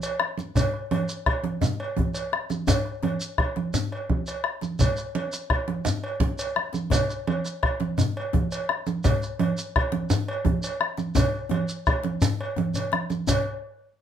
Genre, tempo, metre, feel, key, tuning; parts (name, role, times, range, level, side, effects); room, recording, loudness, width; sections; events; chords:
west african traditional, West African drum ensemble; 113 BPM (dotted quarters); 12/8; straight
cowbell; percussion; 0.0-13.4 s; -31 LUFS; right 3 dB
shekere; percussion; 0.0-13.4 s; -30 LUFS; right 1 dB
bombo; percussion; 0.2-13.4 s; -25 LUFS; left 1 dB
congas; percussion; 0.2-13.4 s; -28 LUFS; right 5 dB
djembe; percussion; 0.2-13.4 s; -29 LUFS; left 6 dB
wet studio reverb, RT60 0.5 s; minimal, uncompressed stereo recording; -23 LUFS; side -9 dB against mid
0.0-13.3 A section
drum fill 12.7-13.3